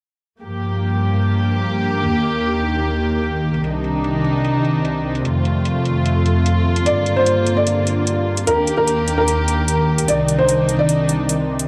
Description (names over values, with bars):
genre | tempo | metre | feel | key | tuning
heavy wobble dubstep | 149 BPM | 4/4 | half-time | G minor | A4 = 440 Hz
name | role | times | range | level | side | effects
dark studio string section | sustained chords | 0.4-11.7 s | C2 to G4 | -20 LUFS | equal | none
electronic hi-hat | drums | 0.4-11.7 s | none | -28 LUFS | equal | low-pass filter on hats
ethereal airy pad | texture | 1.7-11.7 s | Eb3 to C6 | -26 LUFS | equal | ensemble chorus, built-in reverb
dark grand piano | melody | 6.9-11.6 s | Bb4 to D5 | -21 LUFS | equal | dub echo
room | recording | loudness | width
light reverb, small room ambience | dark, warm production | -18 LUFS | mono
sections
0.4-11.7 A section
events
fade-in on ambient pad 0.4-11.7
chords
0.4 Gm7; 2.0 Eb; 3.6 Cmadd9; 5.3 F; 6.9 Gm7; 8.5 Eb; 10.1 Cmadd9